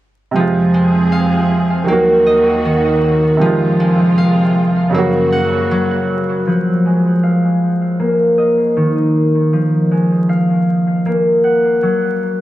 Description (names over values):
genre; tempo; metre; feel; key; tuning
hip hop; 157 BPM; 4/4; half-time; F phrygian; A4 = 441 Hz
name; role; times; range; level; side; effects
felt-muted upright piano; accompaniment; 0.3-6.5 s; C3 to Gb4; -19 LUFS; right 4 dB; dub echo
muted studio string section; sustained chords; 0.4-6.5 s; Eb2 to Ab4; -22 LUFS; right 2 dB; none
concert harp; arpeggios; 0.4-12.4 s; Eb3 to Gb5; -12 LUFS; equal; low-pass filter, dub echo
room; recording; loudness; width
wet spring reverb, RT60 1.4 s, small room ambience; echo-heavy mix, vinyl crackle, faint mains hum; -12 LUFS; side -14 dB against mid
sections
0.4-6.5 A section; 6.5-12.4 B section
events
filter sweep on harp 6.5-12.4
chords
0.4 Fm; 1.9 Ebm; 3.4 Fm; 4.9 Gb; 6.5 Fm; 8.0 Eb5; 9.5 Fm; 11.1 Gb